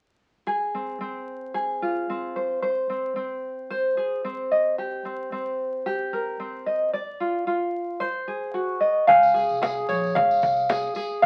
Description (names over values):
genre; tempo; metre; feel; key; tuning
acoustic pop; 111 BPM; 4/4; swing 55% on 16ths; Ab lydian; A4 = 440 Hz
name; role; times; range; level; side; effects
tenor ukulele; accompaniment; 0.5-11.3 s; C4 to Ab5; -25 LUFS; equal; none
vintage muted fingered electric bass; bass; 9.1-11.3 s; Ab1 to Db2; -40 LUFS; equal; none
cajon; drums; 9.1-11.3 s; none; -31 LUFS; equal; none
tambourine; percussion; 9.2-11.1 s; none; -46 LUFS; equal; none
room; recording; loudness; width
wet studio reverb, RT60 0.6 s; very old 78 rpm record, vinyl crackle; -25 LUFS; mono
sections
0.5-9.1 A section; 9.1-11.3 B section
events
none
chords
0.5 Fm; 2.6 Ab; 4.8 Cm7; 6.9 Dm/F; 8.0 Ab7; 9.1 Db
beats
| 0.47 1.01 1.55 2.09 | 2.63 3.17 3.70 4.24 | 4.78 5.32 5.86 6.40 | 6.93 7.47 8.01 8.55 | 9.09 9.62 10.16 10.69 | 11.23